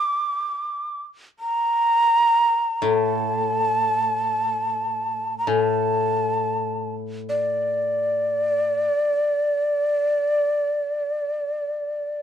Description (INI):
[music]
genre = japanese traditional, Japanese chamber music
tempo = free time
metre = none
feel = none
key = unclear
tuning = A4 = 440 Hz
[part]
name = breathy mellow shakuhachi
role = melody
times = 0.0-12.2 s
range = D5 to D6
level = -21 LUFS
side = right 1 dB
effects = none
[part]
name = koto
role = accompaniment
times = 2.8-8.9 s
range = A2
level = -26 LUFS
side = left 5 dB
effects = none
[sound]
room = light reverb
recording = dark, warm production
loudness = -20 LUFS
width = side -9 dB against mid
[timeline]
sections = 0.0-12.2 A section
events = none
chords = none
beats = free time